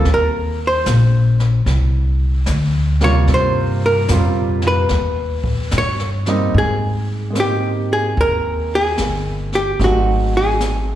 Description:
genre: jazz ballad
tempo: 74 BPM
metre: 4/4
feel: swing 66% on 8ths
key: Eb major, Ab major from 6.5 s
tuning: A4 = 440 Hz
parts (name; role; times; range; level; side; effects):
- archtop guitar, miked and amplified; melody; 0.0-11.0 s; Gb4 to Db5; -19 LUFS; equal; slapback echo
- warm concert grand piano; accompaniment; 0.0-11.0 s; Bb2 to G5; -22 LUFS; right 2 dB; slapback echo
- upright bass; bass; 0.0-11.0 s; G1 to Ab2; -17 LUFS; equal; none
- jazz brush drum kit; drums; 0.1-11.0 s; brushed snare drum, hi-hat, kick drum, snare drum; -28 LUFS; left 2 dB; none
room: light reverb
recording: live gig heard through the venue's PA, recital hall reverb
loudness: -15 LUFS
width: side -12 dB against mid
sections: 0.0-6.5 A section; 6.5-11.0 B section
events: hollow-body jazz guitar solo 0.0-6.5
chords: 0.0 Eb69; 4.9 Eb; 6.5 Abmaj9; 9.8 Ab7b9

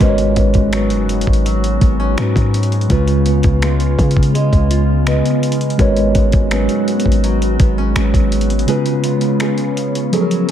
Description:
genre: contemporary R&B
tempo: 83 BPM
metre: 4/4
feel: straight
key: G# dorian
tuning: A4 = 440 Hz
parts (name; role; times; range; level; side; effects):
- mellow tine electric piano; accompaniment; 0.0-10.5 s; C#3 to C#5; -18 LUFS; right 1 dB; fast stereo tremolo
- glassy FM pad; sustained chords; 0.0-10.5 s; C#3 to A#4; -21 LUFS; right 1 dB; ensemble chorus, built-in reverb
- nylon-string guitar; arpeggios; 0.0-10.5 s; G#2 to G#4; -21 LUFS; left 2 dB; tape echo
- warm 808-style bass; bass; 0.0-8.7 s; F#1 to C#3; -17 LUFS; equal; none
- dusty soul sampler-style drum kit; drums; 0.0-10.5 s; finger snaps, hi-hat, kick drum; -18 LUFS; equal; none
room: light reverb, digital ambience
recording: echo-heavy mix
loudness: -12 LUFS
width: side -10 dB against mid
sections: 0.0-10.5 A section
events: kick muted 8.7-10.5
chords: 0.0 G#m11; 2.9 C#7; 5.8 G#m11; 8.7 C#7

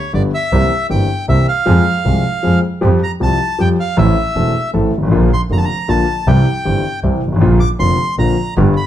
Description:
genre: tango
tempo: 157 BPM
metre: 3/4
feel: rubato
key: F major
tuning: A4 = 440 Hz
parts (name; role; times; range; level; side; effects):
- bandoneon; melody; 0.0-8.9 s; Db5 to D6; -19 LUFS; equal; none
- warm concert grand piano; accompaniment; 0.1-8.7 s; E1 to A4; -15 LUFS; left 2 dB; none
- clear double bass; bass; 0.1-8.7 s; E1 to F2; -17 LUFS; right 2 dB; none
room: light reverb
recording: dark, warm production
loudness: -12 LUFS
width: side -11 dB against mid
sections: 0.0-2.8 A section; 2.8-8.9 B section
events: none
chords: 0.0 G; 0.5 C7; 1.7 Fm; 2.8 Fsus2; 4.0 Am; 5.1 Bb; 6.3 C; 7.4 Bbadd9

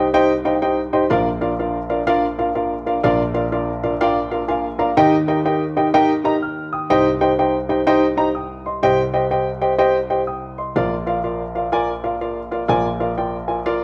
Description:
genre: soul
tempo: 124 BPM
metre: 4/4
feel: swing 64% on 8ths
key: unclear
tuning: A4 = 440 Hz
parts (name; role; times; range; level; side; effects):
- dark upright piano; solo; 0.0-13.8 s; Bb1 to F6; -19 LUFS; equal; none
room: wet stone room reverb, RT60 1.2 s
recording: band playing live in one room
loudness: -19 LUFS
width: mono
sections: 0.0-8.8 A section; 8.8-10.8 B section; 10.8-13.8 C section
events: upright piano fill 0.1-1.1, 3.5-5.0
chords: 0.0 Cm; 1.1 Bb; 5.0 Eb; 6.9 Cm; 10.8 Bb

